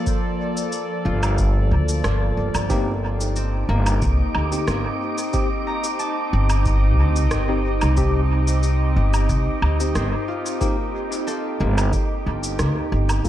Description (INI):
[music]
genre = ambient dub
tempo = 91 BPM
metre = 4/4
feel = swing 53% on 16ths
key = unclear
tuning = A4 = 440 Hz
[part]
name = warbly tape-like pad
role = sustained chords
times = 0.0-13.3 s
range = F3 to Eb5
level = -26 LUFS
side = equal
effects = chorus, built-in reverb
[part]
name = concert harp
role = arpeggios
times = 0.0-13.3 s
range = Bb3 to Bb5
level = -32 LUFS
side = equal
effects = dub echo
[part]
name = electronic kick drum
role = drums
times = 0.1-12.1 s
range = none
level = -24 LUFS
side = equal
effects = none
[part]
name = electronic shaker, woodblock and rim click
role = drums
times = 0.1-13.3 s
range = none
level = -29 LUFS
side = right 1 dB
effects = dub echo
[part]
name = upright bass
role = bass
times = 1.1-13.3 s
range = G1 to D2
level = -20 LUFS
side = equal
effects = none
[part]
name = barky tine electric piano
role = stabs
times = 2.7-13.3 s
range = Bb3 to A4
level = -30 LUFS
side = left 2 dB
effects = medium stereo tremolo, low-pass filter, dub echo
[part]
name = wind-like tuned noise texture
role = texture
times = 3.2-13.3 s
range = Bb4 to D6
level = -33 LUFS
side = right 5 dB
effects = built-in reverb
[sound]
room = light reverb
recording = none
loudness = -18 LUFS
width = side -12 dB against mid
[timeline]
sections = 0.0-13.3 A section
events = none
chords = 0.0 Gm7; 2.7 Cm/G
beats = | 0.06 0.72 1.38 2.04 | 2.70 3.36 4.02 4.68 | 5.34 6.00 6.66 7.32 | 7.98 8.64 9.29 9.95 | 10.61 11.27 11.93 12.59 | 13.25